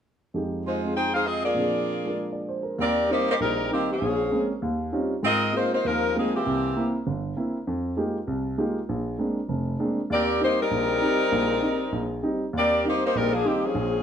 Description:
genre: jazz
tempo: 197 BPM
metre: 4/4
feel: swing 61% on 8ths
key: Eb major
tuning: A4 = 443 Hz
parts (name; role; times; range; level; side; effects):
- warm baby grand piano; accompaniment; 0.3-14.0 s; F1 to D5; -26 LUFS; right 1 dB; none
- warm saxophone section; melody; 0.7-6.9, 10.1-14.0 s; Eb3 to G5; -23 LUFS; left 1 dB; none
room: moderate large studio reverb, RT60 0.8 s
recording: none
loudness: -23 LUFS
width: side -8 dB against mid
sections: 0.3-2.8 A section; 2.8-12.5 B section; 12.5-14.0 B section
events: none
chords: 0.3 Fm7; 1.6 Bb7; 2.8 Eb6; 4.0 Bbm9; 4.6 Eb13; 5.2 Ab69; 6.4 C7; 7.7 Fm11; 8.9 Bb9; 10.1 Eb6

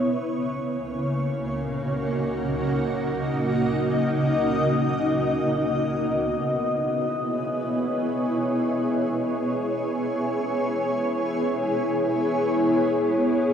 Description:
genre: ambient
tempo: free time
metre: none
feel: none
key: C# dorian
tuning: A4 = 440 Hz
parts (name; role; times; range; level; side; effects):
- granular cloud pad; solo; 0.0-13.5 s; C#3 to D#5; -22 LUFS; equal; built-in reverb
room: wet huge ambient reverb, RT60 9.4 s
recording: none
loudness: -22 LUFS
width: side -8 dB against mid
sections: 0.0-5.5 A section; 5.5-13.5 B section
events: none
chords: 0.0 D#m/C#; 5.5 C#m7

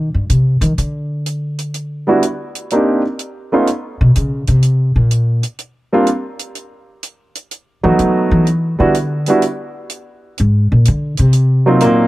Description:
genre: jazz piano trio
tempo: 125 BPM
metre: 4/4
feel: swing 67% on 8ths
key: unclear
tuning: A4 = 439 Hz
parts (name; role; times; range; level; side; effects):
- upright bass; bass; 0.0-11.8 s; G2 to F#3; -13 LUFS; equal; none
- hi-hat; drums; 0.3-12.0 s; none; -26 LUFS; right 3 dB; none
- warm concert grand piano; melody; 2.1-12.1 s; Bb2 to G4; -14 LUFS; right 1 dB; none
room: light reverb, small room ambience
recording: none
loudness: -13 LUFS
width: side -17 dB against mid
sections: 0.0-12.1 A section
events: upright bass solo 0.0-12.1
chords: 0.0 Cm/G; 0.8 N.C.; 2.7 Cm7; 3.7 Bsus2; 4.6 N.C.; 7.5 B7; 8.5 E7(no3); 10.4 Ab13

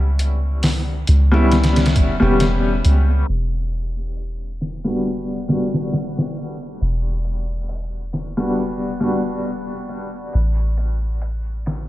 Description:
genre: trip hop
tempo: 68 BPM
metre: 4/4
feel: swing 56% on 16ths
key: E dorian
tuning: A4 = 439 Hz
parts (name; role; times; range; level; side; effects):
- felt-muted upright piano; accompaniment; 0.0-10.4 s; G3 to G4; -22 LUFS; left 1 dB; tremolo, tape echo
- soft 808-style bass; bass; 0.0-11.9 s; E1 to C#2; -19 LUFS; equal; none
- trip hop sampler-style drum kit; drums; 0.2-11.9 s; hi-hat, kick drum, snare drum; -21 LUFS; equal; low-pass filter on hats, small room ambience, low-pass filter on kick, low-pass filter on snare
room: light reverb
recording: low-pass filter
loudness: -17 LUFS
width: side -15 dB against mid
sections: 0.0-3.3 A section; 3.3-11.9 B section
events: none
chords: 0.0 A9 (rootless); 3.3 Em9; 10.3 N.C.

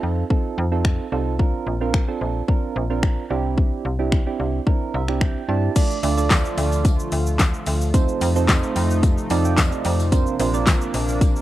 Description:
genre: dance-pop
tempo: 110 BPM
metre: 4/4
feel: straight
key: D minor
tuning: A4 = 437 Hz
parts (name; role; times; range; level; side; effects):
- soft electric-piano-like synth keys; accompaniment; 0.0-11.4 s; A3 to A5; -25 LUFS; right 7 dB; chorus, sidechain pumping, cassette tape
- slap-like FM bass; bass; 0.0-11.4 s; Bb1 to G2; -23 LUFS; left 1 dB; sidechain pumping
- pop drum kit; drums; 0.3-11.4 s; crash cymbal, finger snaps, handclaps, hi-hat, kick drum, shaker, snare drum; -20 LUFS; left 1 dB; cassette tape
- chorused pulse-width pad; sustained chords; 5.8-11.4 s; C3 to F4; -28 LUFS; equal; sidechain pumping, cassette tape
- tambourine; percussion; 5.8-11.3 s; none; -38 LUFS; left 14 dB; none
room: light reverb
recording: home recording on cassette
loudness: -18 LUFS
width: side -14 dB against mid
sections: 0.0-5.8 A section; 5.8-11.4 B section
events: synth keys fill 4.7-5.8, 9.0-10.1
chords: 0.0 F7; 1.4 Bbadd9; 3.3 Cadd9; 5.8 Dm; 7.9 F7; 10.1 Bbadd9

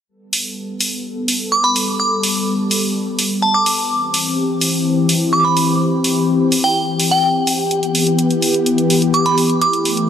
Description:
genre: EDM, festival progressive house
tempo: 126 BPM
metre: 4/4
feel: straight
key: G major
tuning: A4 = 441 Hz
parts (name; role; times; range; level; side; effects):
- lush unison pad; sustained chords; 0.1-10.1 s; E3 to A4; -17 LUFS; left 2 dB; chorus
- electronic hi-hat; drums; 0.3-10.1 s; none; -20 LUFS; equal; none
- glassy synth bell; melody; 1.5-9.7 s; G5 to D6; -18 LUFS; right 1 dB; chorus, phaser, tape echo
room: moderate huge ambient reverb, RT60 4.0 s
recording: none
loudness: -14 LUFS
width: side -8 dB against mid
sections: 0.1-10.1 A section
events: none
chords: 0.1 Gadd9; 3.9 C; 7.7 Em

